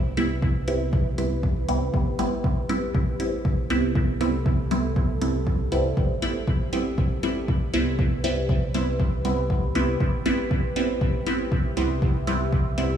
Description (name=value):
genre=dub techno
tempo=119 BPM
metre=4/4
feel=swing 56% on 16ths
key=A minor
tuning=A4 = 442 Hz
part: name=deep dark ambient pad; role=sustained chords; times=0.2-13.0 s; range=G4 to E5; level=-32 LUFS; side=right 1 dB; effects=chorus, built-in reverb, sidechain pumping
part: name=filtered dub chord stab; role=stabs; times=0.0-13.0 s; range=G3 to E4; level=-26 LUFS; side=right 1 dB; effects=phaser, sidechain pumping, dub echo
part: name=soft dub sub bass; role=bass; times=0.0-13.0 s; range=G1 to C2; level=-29 LUFS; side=equal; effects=sidechain pumping
part: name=electronic hi-hat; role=drums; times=0.2-12.9 s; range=none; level=-42 LUFS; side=left 1 dB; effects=small room reverb
part: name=electronic kick drum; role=drums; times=0.4-12.6 s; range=none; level=-25 LUFS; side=equal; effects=small room reverb
room=light reverb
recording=played on a big sound system in a bare room, large studio reverb, studio reverb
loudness=-22 LUFS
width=side -9 dB against mid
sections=0.0-13.0 A section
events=none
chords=0.0 Am9